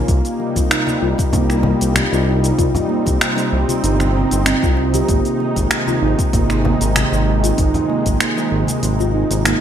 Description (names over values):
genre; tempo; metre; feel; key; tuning
organic downtempo; 96 BPM; 4/4; swing 53% on 16ths; unclear; A4 = 440 Hz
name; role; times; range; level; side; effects
warm analog pad; sustained chords; 0.0-9.6 s; C3 to Eb4; -21 LUFS; right 1 dB; chorus, sidechain pumping
steel tongue drum; arpeggios; 0.0-9.6 s; Bb3 to G4; -20 LUFS; right 1 dB; ping-pong delay
smooth synth bass; bass; 0.0-9.5 s; G1 to C2; -19 LUFS; equal; none
deep house drum kit; drums; 0.1-9.6 s; finger snaps, hi-hat, shaker; -21 LUFS; equal; studio reverb, gated reverb
electronic kick drum; drums; 0.1-8.2 s; none; -19 LUFS; equal; studio reverb
bongos and congas; percussion; 0.4-9.4 s; none; -26 LUFS; left 2 dB; none
room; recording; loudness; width
moderate lush hall reverb, RT60 1.6 s; bright 1980s-style digital production; -14 LUFS; side -9 dB against mid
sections
0.0-9.6 A section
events
none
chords
0.1 Cm7; 5.1 Ab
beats
| 0.08 0.71 1.33 1.96 | 2.58 3.21 3.83 4.46 | 5.08 5.71 6.33 6.96 | 7.58 8.21 8.83 9.46